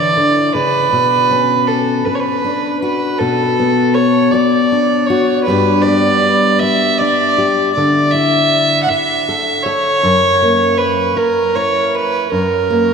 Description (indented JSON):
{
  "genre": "acoustic folk duo or small band",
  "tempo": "53 BPM (dotted quarters)",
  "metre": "6/8",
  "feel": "straight",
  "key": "B minor",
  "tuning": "A4 = 440 Hz",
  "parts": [
    { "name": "warm fiddle", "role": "second line", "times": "0.0-12.9 s", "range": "A4 to F#5", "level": "-14 LUFS", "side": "right 2 dB", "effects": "none" },
    { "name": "fingerpicked steel-string acoustic guitar", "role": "accompaniment", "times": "0.0-12.9 s", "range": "F#2 to A4", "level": "-16 LUFS", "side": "left 3 dB", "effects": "none" }
  ],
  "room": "wet cathedral reverb, RT60 5.0 s",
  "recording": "in a vast, echoing space",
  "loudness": "-12 LUFS",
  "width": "side -6 dB against mid",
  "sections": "0.0-12.9 A section",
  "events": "fiddle solo 0.0-12.9",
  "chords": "0.0 Dsus2; 0.9 Bmadd9; 5.5 G; 7.8 Dsus2; 10.0 F#7"
}